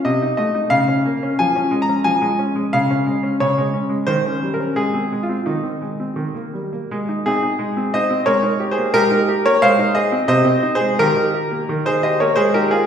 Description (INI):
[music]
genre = classical-period piano sonatina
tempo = 88 BPM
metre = 2/4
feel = rubato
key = Ab major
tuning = A4 = 437 Hz
[part]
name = clear baby grand piano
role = solo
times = 0.0-12.9 s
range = C3 to Bb5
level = -16 LUFS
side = equal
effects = none
[sound]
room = wet recital hall reverb, RT60 1.6 s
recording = recorded in a church or concert hall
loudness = -16 LUFS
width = side -8 dB against mid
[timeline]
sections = 0.0-6.9 A section; 6.9-12.9 B section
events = none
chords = 0.0 Adim/C; 0.7 Bbm/Db; 1.4 Db/F; 2.7 Db; 4.1 Eb7; 4.8 Ab; 5.5 Ab/Eb; 6.2 Eb; 6.9 Ab; 8.3 Eb/Ab; 9.6 Ab; 10.3 Ab/C; 11.0 Eb; 12.4 Ab